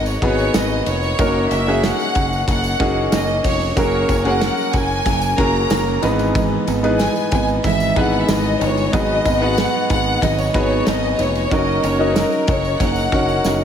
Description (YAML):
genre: piano-driven pop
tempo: 93 BPM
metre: 4/4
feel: straight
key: G# minor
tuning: A4 = 441 Hz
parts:
  - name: clear studio violin section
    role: melody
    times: 0.0-13.6 s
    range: A#4 to A#5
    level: -22 LUFS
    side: left 1 dB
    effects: ping-pong delay
  - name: bright grand piano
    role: accompaniment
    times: 0.0-13.6 s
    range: G#2 to D#5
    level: -20 LUFS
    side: left 1 dB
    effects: slapback echo
  - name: picked electric bass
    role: bass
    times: 0.0-13.6 s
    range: E#1 to G#1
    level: -22 LUFS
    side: equal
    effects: none
  - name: tambourine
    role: percussion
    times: 0.1-13.6 s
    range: none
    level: -39 LUFS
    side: right 7 dB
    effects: none
  - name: loose indie drum kit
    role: drums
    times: 0.2-13.6 s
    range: hi-hat, kick drum, ride cymbal, snare drum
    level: -23 LUFS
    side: equal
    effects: none
  - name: fingerpicked steel-string acoustic guitar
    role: riff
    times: 3.8-13.6 s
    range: G#2 to A#4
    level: -24 LUFS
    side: right 6 dB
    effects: slapback echo
room: moderate lush hall reverb, RT60 1.9 s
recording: big arena sound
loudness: -15 LUFS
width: side -8 dB against mid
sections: 0.0-13.6 A section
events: drum fill 13.4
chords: 0.0 G#m7; 1.2 D#m7/F#; 3.8 F#add9; 6.0 Emaj7/G#; 8.9 G#m7; 11.5 D#m7/F#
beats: 0.54 | 1.19 1.83 2.48 3.12 | 3.77 4.42 5.06 5.71 | 6.35 7.00 7.64 8.29 | 8.93 9.58 10.22 10.87 | 11.51 12.16 12.80 13.45